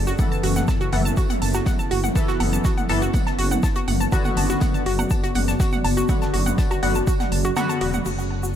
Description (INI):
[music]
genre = melodic techno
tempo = 122 BPM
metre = 4/4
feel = straight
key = unclear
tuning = A4 = 440 Hz
[part]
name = deep dark ambient pad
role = sustained chords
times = 0.0-8.6 s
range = A3 to D5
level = -28 LUFS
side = equal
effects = chorus, built-in reverb, sidechain pumping
[part]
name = swelling detuned saw bass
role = bass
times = 0.0-8.6 s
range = E1 to F#1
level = -24 LUFS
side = equal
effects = sidechain pumping
[part]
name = bowed-like drone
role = drone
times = 0.0-8.6 s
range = F#2 to C#3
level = -34 LUFS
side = right 1 dB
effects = none
[part]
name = analog pluck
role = arpeggios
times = 0.1-8.5 s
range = F#4 to A5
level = -27 LUFS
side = equal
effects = chorus, sidechain pumping, dub echo
[part]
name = egg shaker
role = percussion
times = 0.1-8.5 s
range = none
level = -37 LUFS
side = right 3 dB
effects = none
[part]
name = sync-sweep polysynth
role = stabs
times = 0.2-8.6 s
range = C#3 to A4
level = -28 LUFS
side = left 3 dB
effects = chorus, phaser, sidechain pumping, dub echo
[part]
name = damped 70s drum kit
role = drums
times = 0.2-7.9 s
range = hi-hat, snare drum, tambourine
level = -41 LUFS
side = left 3 dB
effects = high-pass filter on hats, high-pass filter on snare, high-pass filter on perc, high-pass filter on room
[part]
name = electronic kick drum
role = drums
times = 0.2-7.2 s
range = none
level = -22 LUFS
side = equal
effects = overdrive
[part]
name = techno drum kit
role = drums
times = 0.2-8.2 s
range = crash cymbal, hi-hat, toms, woodblock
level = -29 LUFS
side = right 2 dB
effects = sidechain pumping on hats, sidechain pumping on toms, sidechain pumping on perc, sidechain pumping on cymbals
[sound]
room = small room ambience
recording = none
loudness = -19 LUFS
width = side -10 dB against mid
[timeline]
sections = 0.0-8.1 A section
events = kick drops out 7.6-8.1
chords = 0.2 Asus2/F#; 4.1 Bm/F#